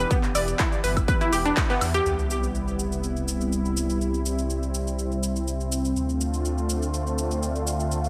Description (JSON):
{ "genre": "progressive house", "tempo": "123 BPM", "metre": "4/4", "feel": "straight", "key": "C major", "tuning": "A4 = 443 Hz", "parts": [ { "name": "lush unison pad", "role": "sustained chords", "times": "0.0-8.1 s", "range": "C3 to G4", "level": "-30 LUFS", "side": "equal", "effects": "chorus, phaser, sidechain pumping" }, { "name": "unison pluck", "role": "arpeggios", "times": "0.0-2.1 s", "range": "B3 to D5", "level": "-28 LUFS", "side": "equal", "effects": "cassette tape, sidechain pumping, digital delay" }, { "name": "dark detuned saw bass", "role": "bass", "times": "0.0-8.1 s", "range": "E1 to E2", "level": "-31 LUFS", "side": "equal", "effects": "sidechain pumping" }, { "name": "electronic kick drum", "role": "drums", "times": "0.1-1.7 s", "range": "none", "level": "-26 LUFS", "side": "equal", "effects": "none" }, { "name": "house drum kit", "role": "drums", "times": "0.1-8.1 s", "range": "handclaps, hi-hat, shaker, woodblock", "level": "-34 LUFS", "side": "equal", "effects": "overdrive" }, { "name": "sub drop", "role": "sound effects", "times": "2.1-4.0 s", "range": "none", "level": "-35 LUFS", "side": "equal", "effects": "none" } ], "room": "moderate lush hall reverb, RT60 2.4 s", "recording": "none", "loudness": "-25 LUFS", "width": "mono", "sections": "0.0-2.1 A section; 2.1-8.1 B section", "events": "band accent 1.6; impact 2.1-4.0", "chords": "0.0 Em; 2.1 Cmaj7; 6.0 Dm7" }